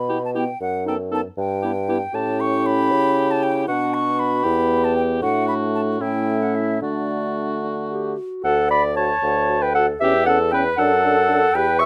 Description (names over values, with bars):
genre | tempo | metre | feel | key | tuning
quick classical-period movement for wind quintet | 77 BPM (dotted quarters) | 6/8 | straight | D major | A4 = 440 Hz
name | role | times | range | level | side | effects
concert flute | melody | 0.0-11.9 s | G4 to C#6 | -27 LUFS | equal | none
mellow bassoon | bass | 0.0-11.9 s | D2 to D3 | -26 LUFS | equal | none
warm oboe | second line | 0.1-11.9 s | E4 to E5 | -27 LUFS | equal | none
dark clarinet | accompaniment | 0.1-11.9 s | C#4 to C#6 | -25 LUFS | equal | none
mellow French horn | accompaniment | 0.1-11.9 s | A3 to G4 | -29 LUFS | equal | none
room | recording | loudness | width
little or no reverb | close, detailed microphones | -20 LUFS | mono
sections
0.0-8.4 A section; 8.4-11.9 B section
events
none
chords
0.0 Em; 0.6 B7/F#; 1.4 Em/G; 2.1 A7; 3.7 Bm; 4.5 Em; 5.2 D/A; 6.0 A7; 6.8 D; 10.0 A13/E; 10.8 D/F#